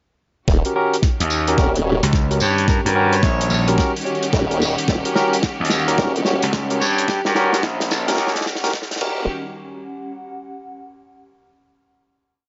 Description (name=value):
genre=glitch hop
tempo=109 BPM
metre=4/4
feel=swing 64% on 16ths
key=unclear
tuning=A4 = 440 Hz
part: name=clear symphonic string section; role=sustained chords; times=0.5-9.3 s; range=Eb3 to G4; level=-31 LUFS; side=equal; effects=sidechain pumping
part: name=formant-sweep wobble bass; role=bass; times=0.5-9.3 s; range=Eb1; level=-23 LUFS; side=equal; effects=chorus, tube saturation
part: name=electronic kick drum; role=drums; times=0.5-9.2 s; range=none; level=-22 LUFS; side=equal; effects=none
part: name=warm soul drum kit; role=drums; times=0.5-9.2 s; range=crash cymbal, hi-hat, snare drum, tambourine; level=-26 LUFS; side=equal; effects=none
part: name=warbly tape-like pad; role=texture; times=2.6-11.4 s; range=G3 to F#5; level=-33 LUFS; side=equal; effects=chorus, built-in reverb, sidechain pumping
part: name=barky tine electric piano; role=stabs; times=0.7-9.2 s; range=Db4 to Db5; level=-25 LUFS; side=equal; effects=sidechain pumping, tape echo
part: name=gritty slap bass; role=bass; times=1.2-8.4 s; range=Bb1 to G2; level=-22 LUFS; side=equal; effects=overdrive
part: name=overdriven harmonica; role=melody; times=2.4-7.3 s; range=G4 to Db5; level=-29 LUFS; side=equal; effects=tape echo
room=light reverb, small room ambience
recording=high-pass filter, nothing above 7.6 kHz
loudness=-19 LUFS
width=mono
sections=0.5-9.3 build; 9.3-11.5 final note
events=build-up 0.5-9.3; drum fill 0.5-9.3; filter sweep 0.5-9.3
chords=0.5 Eb7#9; 9.3 Dbsus4